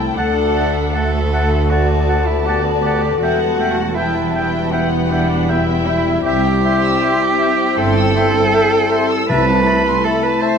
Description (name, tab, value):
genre	cinematic, emotional film score for orchestra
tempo	79 BPM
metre	4/4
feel	rubato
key	C lydian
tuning	A4 = 440 Hz
part	muted studio violin section	melody	0.0-10.6 s	E5 to A5	-27 LUFS	left 5 dB	none
part	muted studio violin section	second line	0.0-10.6 s	D5 to E6	-26 LUFS	left 3 dB	none
part	muted symphonic viola section	accompaniment	0.0-10.6 s	A3 to E4	-25 LUFS	right 2 dB	none
part	mellow French horn section	sustained chords	0.0-10.6 s	G3 to A4	-21 LUFS	left 8 dB	none
part	muted studio cello section	bass	0.0-9.9 s	C2 to G2	-22 LUFS	right 3 dB	none
part	muted studio double bass section	bass	0.0-9.9 s	E1 to D2	-22 LUFS	right 2 dB	none
part	muted cello	melody	0.2-10.6 s	B3 to C5	-19 LUFS	right 2 dB	none
part	clear clarinet	second line	0.2-10.6 s	E5 to F#5	-26 LUFS	left 3 dB	none
part	warm oboe	second line	0.2-10.6 s	G5 to A5	-27 LUFS	right 2 dB	none
part	timpani	percussion	9.3-10.4 s	C3	-24 LUFS	left 2 dB	none
room	moderate recital hall reverb, RT60 1.5 s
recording	close, detailed microphones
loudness	-13 LUFS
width	side -6 dB against mid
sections	0.0-10.6 A section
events	none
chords	0.2 D; 3.2 Emadd9; 6.3 C; 9.3 Amadd9/C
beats	| 0.18 0.95 1.71 2.47 | 3.22 3.97 4.72 5.49 | 6.25 7.02 7.78 8.54 | 9.29 10.04